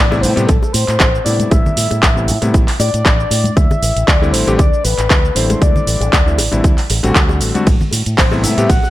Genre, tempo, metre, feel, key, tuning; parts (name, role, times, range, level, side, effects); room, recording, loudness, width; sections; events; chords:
nu-disco, nu disco; 117 BPM; 4/4; swing 55% on 16ths; A dorian; A4 = 441 Hz
soft octave-layered synth lead; melody; 0.0-8.9 s; A4 to F#5; -20 LUFS; left 2 dB; chorus, digital delay
warm electric grand piano; accompaniment; 0.0-8.7 s; C3 to G4; -19 LUFS; left 2 dB; sidechain pumping, digital delay
fingered electric bass with an envelope filter; bass; 0.0-8.8 s; A1 to A2; -18 LUFS; equal
house drum kit; drums; 0.1-8.9 s; cabasa, handclaps, hi-hat, ride cymbal; -18 LUFS; right 1 dB; overdrive
bongos and congas; percussion; 0.1-8.9 s; -23 LUFS; left 2 dB
electronic kick drum; drums; 0.5-8.8 s; -13 LUFS; equal; overdrive
digital ambience; -11 LUFS; side -15 dB against mid
0.0-8.9 A section
0.0 Am9; 3.6 D9sus4; 7.7 Am9